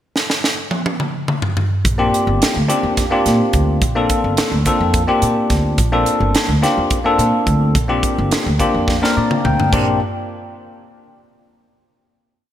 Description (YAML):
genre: electric jazz fusion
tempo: 213 BPM (eighths)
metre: 7/8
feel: straight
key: Bb major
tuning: A4 = 439 Hz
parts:
  - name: crisp fusion drum kit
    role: drums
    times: 0.2-9.9 s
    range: crash cymbal, hi-hat, kick drum, snare drum, toms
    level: -19 LUFS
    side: right 1 dB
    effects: none
  - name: upright bass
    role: bass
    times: 1.8-10.0 s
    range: G1 to Bb2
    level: -19 LUFS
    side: equal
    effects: none
  - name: bell-like tine electric piano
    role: accompaniment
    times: 2.0-10.0 s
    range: Bb3 to G5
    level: -17 LUFS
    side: left 1 dB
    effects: lush chorus
room: moderate lush hall reverb, RT60 2.5 s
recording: bright 1980s-style digital production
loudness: -14 LUFS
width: side -11 dB against mid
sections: 0.0-1.8 pickup bar; 1.8-9.7 groove; 9.7-11.7 final chord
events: drum fill 0.2-1.8, 8.9-9.7; tine electric piano fill 8.9-9.7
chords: 0.0 N.C.; 1.8 Bb69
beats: 0.15 0.43 0.72 1.00 1.28 1.56 | 1.84 2.13 2.41 2.69 2.97 3.25 3.53 | 3.82 4.10 4.38 4.66 4.94 5.22 5.50 | 5.79 6.07 6.35 6.63 6.91 7.19 7.47 | 7.75 8.04 8.32 8.60 8.88 9.16 9.44 | 9.72